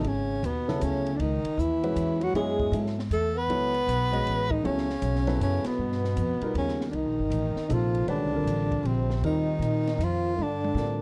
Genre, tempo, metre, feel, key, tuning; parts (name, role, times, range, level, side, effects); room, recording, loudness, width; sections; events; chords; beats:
modal jazz; 157 BPM; 3/4; swing 64% on 8ths; C dorian from 6.9 s; A4 = 440 Hz
breathy tenor saxophone; melody; 0.0-11.0 s; B3 to B4; -31 LUFS; equal
breathy trombone; second line; 0.0-11.0 s; B2 to B3; -36 LUFS; equal
dark baby grand piano; accompaniment; 0.0-11.0 s; C3 to E5; -34 LUFS; equal
upright bass; bass; 0.0-11.0 s; G1 to Bb2; -32 LUFS; equal
compact cocktail drum kit; drums; 0.0-10.9 s; hi-hat, kick drum, ride cymbal, snare drum, toms; -42 LUFS; equal
light reverb; dark, warm production; -27 LUFS; mono
0.0-6.9 A section; 6.9-11.0 B section
band accent 5.6; drum fill 10.4-11.0
0.0 C#m11; 2.3 F#m11; 5.8 G7alt; 6.9 Cm11
| 0.05 0.43 0.81 | 1.20 1.58 1.96 | 2.34 2.73 3.11 | 3.49 3.87 4.26 | 4.64 5.02 5.40 | 5.79 6.17 6.55 | 6.93 7.32 7.70 | 8.08 8.47 8.85 | 9.23 9.62 10.00 | 10.38 10.76